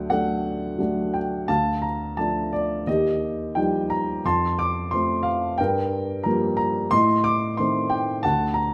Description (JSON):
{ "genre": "classical, lyrical solo piano", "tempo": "88 BPM", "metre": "4/4", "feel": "rubato", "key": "unclear", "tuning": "A4 = 440 Hz", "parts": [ { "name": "dark baby grand piano", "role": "solo", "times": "0.0-8.7 s", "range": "D2 to D6", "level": "-24 LUFS", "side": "equal", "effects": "none" } ], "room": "moderate recital hall reverb, RT60 1.5 s", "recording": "none", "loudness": "-24 LUFS", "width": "mono", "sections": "0.0-8.7 A section", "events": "none", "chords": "0.0 D; 1.5 Dm; 2.9 Ebadd9; 4.2 F; 5.6 Gm7; 6.9 Adim" }